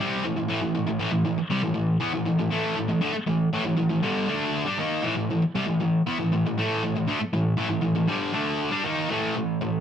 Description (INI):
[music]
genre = rock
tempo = 119 BPM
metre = 4/4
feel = straight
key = unclear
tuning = A4 = 440 Hz
[part]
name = sludgy distorted guitar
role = solo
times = 0.0-9.8 s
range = G2 to D#4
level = -23 LUFS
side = equal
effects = overdrive
[sound]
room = moderate studio reverb, RT60 0.7 s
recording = band playing live in one room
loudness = -23 LUFS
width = side -8 dB against mid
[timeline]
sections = 0.0-9.1 A section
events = none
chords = 0.0 A5